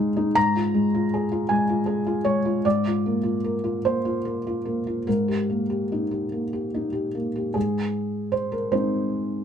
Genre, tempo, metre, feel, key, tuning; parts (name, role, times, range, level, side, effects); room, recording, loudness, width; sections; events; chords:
neoclassical minimalist piano; 48-53 BPM (dotted quarters); 6/8; rubato; Ab major; A4 = 440 Hz
felt-muted upright piano; solo; 0.0-9.4 s; Ab2 to Bb5; -22 LUFS; equal
light reverb; close, detailed microphones; -22 LUFS; side -8 dB against mid
0.0-7.6 A section; 7.6-9.4 B section
0.4 Bbm7/Ab; 2.6 Bb/Ab; 5.1 Eb/Ab; 7.6 Ab